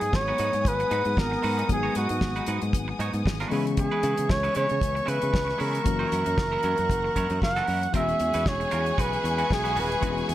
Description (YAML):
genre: disco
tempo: 115 BPM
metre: 4/4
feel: swing 56% on 16ths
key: unclear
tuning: A4 = 438 Hz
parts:
  - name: breathy flugelhorn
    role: melody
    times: 0.0-10.3 s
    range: F#4 to F#5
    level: -27 LUFS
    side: right 1 dB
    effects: none
  - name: mellow tine electric piano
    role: accompaniment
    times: 0.0-10.3 s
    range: E3 to G#4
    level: -33 LUFS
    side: left 4 dB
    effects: auto-pan
  - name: semi-hollow electric guitar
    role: accompaniment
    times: 0.0-10.3 s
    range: F#3 to C#5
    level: -35 LUFS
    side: right 6 dB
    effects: none
  - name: dark studio string section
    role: sustained chords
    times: 0.0-10.3 s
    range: B3 to D#6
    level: -35 LUFS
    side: left 2 dB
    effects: none
  - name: fingered electric bass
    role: bass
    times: 0.0-10.3 s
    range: D#1 to C#3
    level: -30 LUFS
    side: equal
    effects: none
  - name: damped 70s drum kit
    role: drums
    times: 0.0-10.3 s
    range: hi-hat, kick drum, snare drum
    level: -29 LUFS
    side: equal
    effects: none
  - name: warm symphonic violin section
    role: second line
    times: 7.9-10.3 s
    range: G#4 to G#5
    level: -30 LUFS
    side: left 2 dB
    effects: none
room: light reverb, small room reverb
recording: none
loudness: -23 LUFS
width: side -13 dB against mid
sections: 0.0-7.9 A section; 7.9-10.3 B section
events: none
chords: 0.0 G#m7; 3.5 C#m7; 5.9 F#7; 7.9 E69